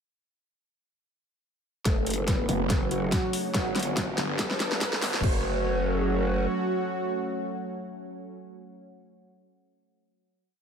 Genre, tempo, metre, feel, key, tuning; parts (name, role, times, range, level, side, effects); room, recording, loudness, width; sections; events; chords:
heavy wobble dubstep; 142 BPM; 4/4; swing 55% on 16ths, half-time; F# phrygian; A4 = 440 Hz
soft supersaw; melody; 1.9-8.4 s; F#3 to B4; -33 LUFS; equal; low-pass filter, ping-pong delay
lush unison pad; sustained chords; 1.9-8.4 s; C#3 to C#4; -33 LUFS; right 2 dB; chorus, sidechain pumping
growl bass; bass; 1.9-6.5 s; F#1 to B1; -30 LUFS; equal; chorus, overdrive
dubstep drum kit; drums; 1.9-5.3 s; crash cymbal, kick drum; -28 LUFS; equal
dubstep drum kit; drums; 1.9-5.2 s; hi-hat, snare drum; -30 LUFS; equal
riser; sound effects; 3.3-5.2 s; -37 LUFS; right 1 dB
warbly tape-like pad; texture; 2.6-8.5 s; F#4 to A5; -38 LUFS; equal; chorus, built-in reverb, sidechain pumping
snarling distorted saw bass; bass; 2.5-5.2 s; F#1 to G1; -29 LUFS; left 1 dB; distortion, overdrive
light reverb; high-pass filter; -25 LUFS; side -7 dB against mid
1.9-5.2 build; 5.2-8.6 final chord
build-up 1.9-5.2; drum fill 1.9-5.2; filter sweep on analog synth pad 1.9-5.2; filter sweep on supersaw synth 1.9-5.2; filter sweep 1.9-5.2; riser 3.3-5.2
1.9 F#m; 3.5 G; 5.2 F#m